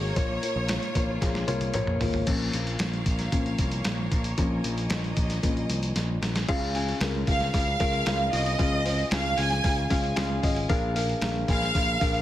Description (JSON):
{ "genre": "piano-driven pop", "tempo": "114 BPM", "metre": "4/4", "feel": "straight", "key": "unclear", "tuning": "A4 = 437 Hz", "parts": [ { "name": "dark studio violin section", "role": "melody", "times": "0.0-1.7, 7.3-12.2 s", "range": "Db5 to Ab5", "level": "-29 LUFS", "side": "right 2 dB", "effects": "digital delay" }, { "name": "felt-muted upright piano", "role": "accompaniment", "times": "0.0-12.2 s", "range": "Bb2 to Ab5", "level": "-30 LUFS", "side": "left 3 dB", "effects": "none" }, { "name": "clear studio string section", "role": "sustained chords", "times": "0.0-6.5 s", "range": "Bb3 to F5", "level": "-38 LUFS", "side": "right 1 dB", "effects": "none" }, { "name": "picked electric bass", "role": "bass", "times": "0.0-12.2 s", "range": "Ab1 to Db2", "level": "-29 LUFS", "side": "equal", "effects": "none" }, { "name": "lo-fi sampler-style drum kit", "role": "drums", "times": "0.2-12.2 s", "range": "crash cymbal, hi-hat, kick drum, snare drum, toms", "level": "-28 LUFS", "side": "equal", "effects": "none" } ], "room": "moderate large studio reverb, RT60 1.3 s, digital ambience", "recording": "dense, heavily limited modern master, lossy compression artefacts", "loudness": "-24 LUFS", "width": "side -13 dB against mid", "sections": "0.0-2.3 A section; 2.3-6.5 B section; 6.5-12.2 C section", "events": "drum fill 1.2-2.3, 6.0-6.5; felt piano solo 2.3-6.5", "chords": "0.2 Bbm; 6.5 Db; 10.7 Bb7" }